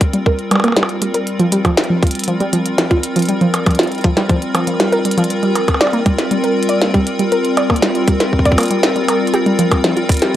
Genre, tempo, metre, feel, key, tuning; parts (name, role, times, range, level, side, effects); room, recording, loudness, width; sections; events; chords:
IDM; 119 BPM; 4/4; straight; G minor; A4 = 440 Hz
icy glass pad; sustained chords; 0.0-10.4 s; G3 to Bb4; -18 LUFS; left 1 dB; chorus, built-in reverb
electronic kick drum; drums; 0.0-10.2 s; -15 LUFS; equal; overdrive
glitchy drum kit; drums; 0.0-10.3 s; hi-hat, percussion blips, snare drum; -18 LUFS; equal; overdrive
warbly dusty pluck; arpeggios; 0.1-10.3 s; F3 to D5; -17 LUFS; right 1 dB; chorus, analog delay
light reverb, digital ambience; dry, gritty hardware recording; -13 LUFS; side -12 dB against mid
0.0-10.4 A section
0.0 Gm; 1.3 C7sus4; 5.3 Gm; 9.3 C7sus4